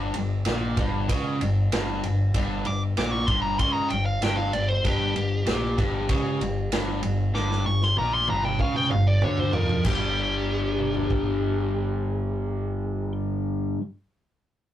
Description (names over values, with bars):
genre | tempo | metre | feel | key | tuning
blues rock power trio and southern rock | 96 BPM | 4/4 | straight | G minor | A4 = 440 Hz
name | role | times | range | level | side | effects
biting lead guitar | melody | 0.0-13.1 s | G4 to D6 | -28 LUFS | equal | overdrive
biting overdriven guitar | riff | 0.0-13.8 s | G2 to G3 | -27 LUFS | left 1 dB | none
growling picked electric bass | bass | 0.0-13.7 s | G1 to F2 | -29 LUFS | equal | overdrive
vintage drum kit | drums | 0.1-11.3 s | crash cymbal, kick drum, ride cymbal, snare drum, toms | -28 LUFS | right 1 dB | none
room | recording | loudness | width
wet booth ambience, RT60 0.2 s | rough rehearsal-room recording, tube saturation | -22 LUFS | side -12 dB against mid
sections
0.0-9.9 A section; 9.9-12.4 B section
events
drum fill 7.4-9.9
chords
0.0 Gm; 9.9 G5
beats
0.47 1.09 1.72 | 2.34 2.97 3.60 4.22 | 4.85 5.48 6.10 6.73 | 7.35 7.98 8.61 9.23 | 9.86 10.48 11.11 11.73